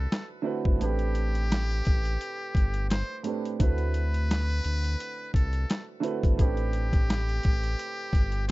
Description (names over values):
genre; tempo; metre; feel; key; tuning
hip hop, boom-bap hip-hop; 86 BPM; 4/4; swing 54% on 16ths; A dorian; A4 = 444 Hz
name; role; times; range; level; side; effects
trumpet with metal mute; melody; 0.0-8.5 s; G4 to C5; -35 LUFS; left 1 dB; high-pass filter, low-pass filter, digital delay
dark upright piano; accompaniment; 0.0-8.5 s; A2 to B4; -34 LUFS; right 5 dB; cassette tape, high-pass filter, low-pass filter
round analog bass; bass; 0.0-8.5 s; G1 to D2; -28 LUFS; equal; none
boom bap sampler-style drum kit; drums; 0.1-8.5 s; handclaps, hi-hat, kick drum, snare drum; -24 LUFS; equal; none
room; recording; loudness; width
little or no reverb; dark, warm production, nothing above 7.7 kHz; -25 LUFS; side -19 dB against mid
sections
0.0-8.5 A section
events
break 0.0-0.8; kick muted 0.8-1.5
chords
0.0 D13; 0.8 Am11; 3.6 D13; 6.4 Am11